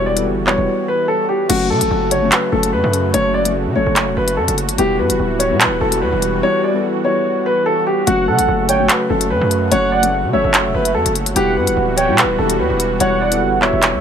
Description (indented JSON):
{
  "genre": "hip hop, drill",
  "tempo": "146 BPM",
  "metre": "4/4",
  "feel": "half-time",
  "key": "F# phrygian",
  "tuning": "A4 = 440 Hz",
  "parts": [
    { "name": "felt-muted upright piano", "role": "accompaniment", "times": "0.0-14.0 s", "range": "F#3 to A4", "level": "-21 LUFS", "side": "left 5 dB", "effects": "none" },
    { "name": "warm analog pad", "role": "sustained chords", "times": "0.0-14.0 s", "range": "C#3 to F#4", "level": "-24 LUFS", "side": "right 4 dB", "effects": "chorus" },
    { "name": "distorted 808-style bass", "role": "bass", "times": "0.0-14.0 s", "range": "D1 to C#3", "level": "-22 LUFS", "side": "right 1 dB", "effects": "distortion" },
    { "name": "warm concert grand piano", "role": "melody", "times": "0.1-14.0 s", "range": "F#4 to D5", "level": "-18 LUFS", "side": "equal", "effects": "digital delay" },
    { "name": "drill drum kit", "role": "drums", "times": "0.2-13.9 s", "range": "crash cymbal, handclaps, hi-hat", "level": "-18 LUFS", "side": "equal", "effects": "none" },
    { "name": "warm velvety synth lead", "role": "second line", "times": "8.1-14.0 s", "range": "E5 to G5", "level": "-21 LUFS", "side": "right 5 dB", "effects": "chorus, digital delay" }
  ],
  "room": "light reverb",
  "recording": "none",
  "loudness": "-14 LUFS",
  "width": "side -8 dB against mid",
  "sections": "0.0-1.5 A section; 1.5-14.0 B section",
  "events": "drums muted 6.4-8.1",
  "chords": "0.0 Emadd9; 1.5 F#m; 4.8 Emadd9; 8.1 F#m; 11.4 Emadd9"
}